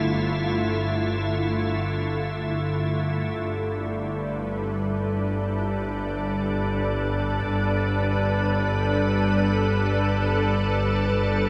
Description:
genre	ambient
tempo	free time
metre	none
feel	none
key	G mixolydian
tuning	A4 = 440 Hz
part	soft additive organ-like pad	sustained chords	0.0-11.5 s	D3 to B4	-27 LUFS	equal	ensemble chorus, built-in reverb
part	clear studio double bass section	bass	0.0-11.5 s	G1	-29 LUFS	equal	none
room	wet huge ambient reverb, RT60 8.2 s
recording	none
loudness	-25 LUFS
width	mono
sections	0.0-3.4 A section; 3.4-11.5 B section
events	filter sweep on ambient pad 3.4-11.5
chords	0.0 G7

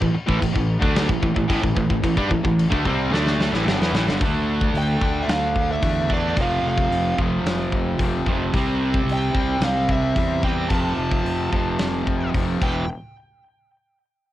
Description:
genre	heavy metal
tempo	110 BPM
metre	4/4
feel	straight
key	unclear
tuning	A4 = 442 Hz
part	distorted electric guitar	riff	0.0-12.8 s	E2 to D4	-27 LUFS	left 7 dB	overdrive, cassette tape
part	distorted electric guitar	riff	0.0-12.8 s	E2 to D4	-25 LUFS	right 6 dB	distortion, cassette tape
part	tight distorted guitar	riff	0.0-4.2 s	G2 to D4	-29 LUFS	left 1 dB	distortion, cassette tape
part	fuzz fingered electric bass	bass	0.0-12.9 s	E1 to G2	-25 LUFS	equal	overdrive
part	big rock drum kit	drums	0.0-12.7 s	crash cymbal, hi-hat, kick drum, snare drum	-24 LUFS	equal	cassette tape
part	smooth overdriven lead guitar	melody	4.8-12.9 s	D5 to A5	-26 LUFS	right 1 dB	tape echo
room	little or no reverb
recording	home recording on cassette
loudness	-19 LUFS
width	side -14 dB against mid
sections	0.0-4.2 A section; 4.2-12.9 B section; 12.9-14.3 C section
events	drum fill 3.1-4.2, 12.6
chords	0.0 A5; 4.2 D5; 6.4 F5; 8.5 C; 10.7 F; 12.6 Em; 12.9 N.C.

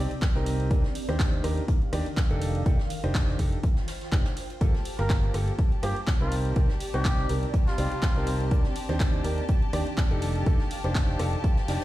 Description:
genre	piano house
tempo	123 BPM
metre	4/4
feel	swing 55% on 16ths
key	unclear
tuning	A4 = 439 Hz
part	clear concert grand piano	riff	0.0-11.8 s	Bb3 to D5	-33 LUFS	right 1 dB	sidechain pumping, ping-pong delay
part	fingered electric bass	bass	0.0-11.8 s	F1 to G2	-28 LUFS	equal	sidechain pumping
part	granular cloud pad	texture	0.0-11.8 s	Eb3 to A5	-38 LUFS	equal	built-in reverb, sidechain pumping
part	punchy analog drum machine	drums	0.1-11.8 s	handclaps, hi-hat, ride cymbal, rim click	-37 LUFS	equal	overdrive
part	electronic kick drum	drums	0.2-11.5 s	none	-24 LUFS	equal	none
part	jazz brush drum kit	drums	0.2-11.8 s	hi-hat, snare drum	-45 LUFS	right 1 dB	high-pass filter on hats, high-pass filter on snare, high-pass filter on room
part	bright chamber string section	sustained chords	4.6-11.8 s	G4 to A5	-38 LUFS	left 4 dB	sidechain pumping
part	trumpet with cup mute	melody	5.0-8.3 s	F4 to Bb4	-35 LUFS	left 1 dB	vintage 12-bit sampler grit, ping-pong delay
room	studio reverb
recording	played on a big sound system in a bare room, stone room reverb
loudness	-23 LUFS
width	side -16 dB against mid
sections	0.0-11.8 A section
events	none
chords	0.0 Cm7; 0.7 Ebmaj7; 2.4 F13; 4.6 Gm9; 6.3 Cm7; 8.5 Ebmaj7; 10.2 F13

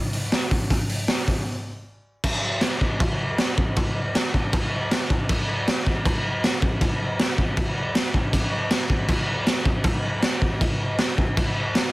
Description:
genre	punk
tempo	158 BPM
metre	4/4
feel	straight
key	none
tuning	none
part	raw garage drum kit	drums	0.1-11.8 s	crash cymbal, hi-hat, kick drum, snare drum	-21 LUFS	equal	none
room	little or no reverb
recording	dense, heavily limited modern master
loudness	-21 LUFS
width	side -20 dB against mid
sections	0.0-2.2 A section; 2.2-11.9 B section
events	break 1.5-2.2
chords	none

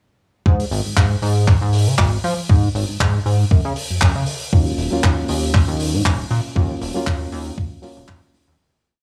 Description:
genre	nu-disco, nu disco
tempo	118 BPM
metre	4/4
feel	swing 54% on 16ths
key	Eb minor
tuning	A4 = 439 Hz
part	chorused synth bass	bass	0.5-8.6 s	Eb1 to F3	-22 LUFS	equal	none
part	electronic kick drum	drums	0.5-8.2 s	none	-17 LUFS	equal	small room reverb
part	damped 70s drum kit	drums	0.6-8.5 s	handclaps, hi-hat	-27 LUFS	equal	small room reverb
part	reed electric piano	accompaniment	4.5-8.6 s	Gb3 to F4	-28 LUFS	equal	tape echo
room	studio ambience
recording	dry, gritty hardware recording, small room ambience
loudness	-18 LUFS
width	mono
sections	0.5-8.6 groove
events	fade-out 5.9-8.6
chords	0.5 N.C.; 4.3 Ebm9

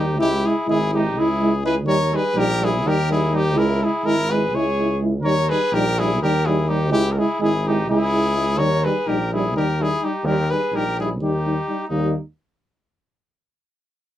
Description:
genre	balkan folk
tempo	251 BPM (eighths)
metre	7/8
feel	straight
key	Eb phrygian dominant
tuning	A4 = 439 Hz
part	warm trumpet	melody	0.0-12.1 s	Eb4 to Db5	-23 LUFS	left 2 dB	none
part	mellow trumpet	second line	0.0-12.1 s	Bb3 to Bb4	-26 LUFS	right 1 dB	none
part	mellow trombone	accompaniment	0.0-12.1 s	Eb4 to Fb4	-25 LUFS	left 2 dB	none
part	warm euphonium	accompaniment	0.0-12.1 s	G3 to Ab3	-26 LUFS	right 5 dB	none
part	warm tuba	bass	0.0-12.1 s	Ab1 to Eb2	-23 LUFS	equal	none
room	wet booth ambience, RT60 0.2 s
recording	heard from further back in the room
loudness	-18 LUFS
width	side -12 dB against mid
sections	0.0-11.9 A section; 11.9-13.5 B section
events	none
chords	0.2 Dbm; 1.9 Eb; 3.6 Dbm; 5.2 Eb; 6.9 Dbm; 8.6 Eb

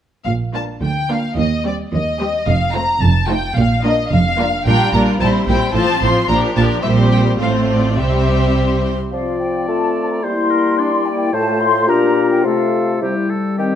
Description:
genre	quick classical-period movement for symphony orchestra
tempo	109 BPM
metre	2/4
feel	straight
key	Bb major, F major from 4.7 s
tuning	A4 = 440 Hz
part	rich studio violin section	melody	0.3-8.8 s	D5 to C6	-20 LUFS	left 2 dB	none
part	clear studio double bass section	bass	0.3-8.9 s	F1 to Eb2	-20 LUFS	right 3 dB	none
part	rich symphonic cello section	bass	0.3-8.9 s	D2 to C3	-20 LUFS	right 2 dB	none
part	clear studio viola section	accompaniment	0.5-8.9 s	F3 to Eb4	-20 LUFS	equal	none
part	rich studio violin section	second line	0.6-8.9 s	E4 to C5	-23 LUFS	left 1 dB	none
part	clear clarinet	second line	9.1-13.8 s	C4 to G4	-24 LUFS	left 4 dB	none
part	large flute ensemble	second line	9.1-13.6 s	F5 to C6	-21 LUFS	left 4 dB	none
part	warm oboe	second line	9.1-13.8 s	G4 to D5	-24 LUFS	equal	none
part	warm bassoon	accompaniment	9.1-13.8 s	A2 to A3	-21 LUFS	right 2 dB	none
part	warm French horn section	sustained chords	9.1-13.8 s	G3 to F4	-19 LUFS	left 4 dB	none
room	moderate scoring stage reverb, RT60 1.5 s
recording	close, detailed microphones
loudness	-14 LUFS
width	side -9 dB against mid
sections	0.3-9.1 A section; 9.1-13.8 B section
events	none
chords	0.3 Bb; 0.8 Bb/D; 1.4 Cm/Eb; 2.5 F; 3.0 F7; 3.6 Bb; 4.7 Gm7; 5.2 C7; 5.8 F/A; 6.3 Gm7; 6.8 C7(no3)/Bb; 7.4 F/A; 8.0 C; 9.1 F; 10.2 C7/G; 11.3 F/A; 11.9 Bb; 12.4 F/C; 13.0 C

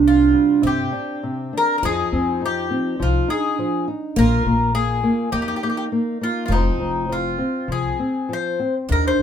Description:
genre	fado-style ballad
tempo	101 BPM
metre	4/4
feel	rubato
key	unclear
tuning	A4 = 439 Hz
part	picked twelve-string acoustic guitar	second line	0.0-9.2 s	C4 to F4	-23 LUFS	right 6 dB	none
part	flamenco guitar	accompaniment	0.0-9.2 s	C3 to Eb4	-23 LUFS	left 2 dB	none
part	upright bass	bass	0.0-9.2 s	F1 to G2	-22 LUFS	left 1 dB	none
part	Greek bouzouki	melody	0.1-9.2 s	Eb4 to C5	-23 LUFS	left 3 dB	none
room	wet small room ambience, RT60 0.5 s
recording	minimal, uncompressed stereo recording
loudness	-18 LUFS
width	side -8 dB against mid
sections	0.0-9.2 A section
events	none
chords	0.0 Csus2; 1.8 Fm7; 4.2 Bb7sus4; 6.5 Fm7

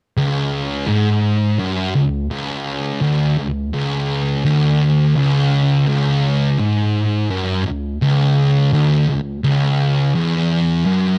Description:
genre	metal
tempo	84 BPM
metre	4/4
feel	straight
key	unclear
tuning	A4 = 444 Hz
part	thick fuzz guitar	riff	0.2-11.2 s	C#2 to G#2	-21 LUFS	equal	distortion
part	thick fuzz guitar	riff	0.2-11.2 s	C#2 to G#2	-20 LUFS	equal	distortion
room	little or no reverb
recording	dry, close 1970s-style studio recording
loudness	-18 LUFS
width	mono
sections	0.2-11.2 A section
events	none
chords	0.2 C#m

